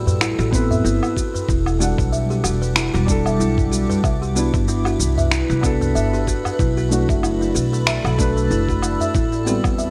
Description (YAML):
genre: organic downtempo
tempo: 94 BPM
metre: 4/4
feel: swing 56% on 16ths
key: E minor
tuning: A4 = 440 Hz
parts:
  - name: felt-muted upright piano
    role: accompaniment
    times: 0.0-9.9 s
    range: G3 to F#5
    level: -27 LUFS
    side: equal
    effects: sidechain pumping, delay
  - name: granular cloud pad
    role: sustained chords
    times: 0.0-9.9 s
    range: G3 to D6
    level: -30 LUFS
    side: equal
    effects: built-in reverb, subtle chorus, sidechain pumping
  - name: upright bass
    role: bass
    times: 0.0-9.9 s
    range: E1 to E2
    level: -24 LUFS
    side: equal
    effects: sidechain pumping
  - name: buzzing kalimba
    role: arpeggios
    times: 0.1-9.9 s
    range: E4 to E5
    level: -26 LUFS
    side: equal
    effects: delay
  - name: electronic cabasa, finger snaps and woodblock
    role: drums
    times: 0.1-9.9 s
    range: none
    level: -28 LUFS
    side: equal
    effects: overdrive, gated reverb
  - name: udu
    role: percussion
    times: 0.1-9.1 s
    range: none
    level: -26 LUFS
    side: equal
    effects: none
  - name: electronic kick drum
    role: drums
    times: 0.5-9.8 s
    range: none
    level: -24 LUFS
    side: equal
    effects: overdrive
room: light reverb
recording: bright 1980s-style digital production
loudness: -19 LUFS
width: mono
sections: 0.0-9.9 A section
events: none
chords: 0.0 Am7; 1.5 Em9; 4.0 Cmaj7; 6.6 Bm7; 9.1 Am7